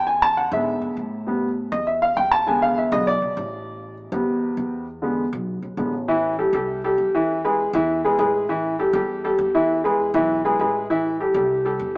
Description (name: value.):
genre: latin, salsa.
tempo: 199 BPM.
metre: 4/4.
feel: straight.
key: A minor.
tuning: A4 = 436 Hz.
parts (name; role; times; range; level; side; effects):
clear upright piano; accompaniment; 0.0-11.9 s; C3 to A5; -19 LUFS; equal; none.
upright bass; bass; 0.0-12.0 s; A1 to A2; -32 LUFS; equal; none.
room: moderate plate reverb, RT60 3.5 s.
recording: heard from further back in the room, small speaker sound.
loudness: -19 LUFS.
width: side -28 dB against mid.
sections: 0.0-6.1 A section; 6.1-12.0 B section.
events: upright piano solo 0.0-6.1.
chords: 0.1 E7; 1.3 Am7; 2.5 E7; 3.7 Am7; 4.9 E7; 6.1 Am7; 7.3 E; 8.5 A5; 9.7 E; 10.9 Am7.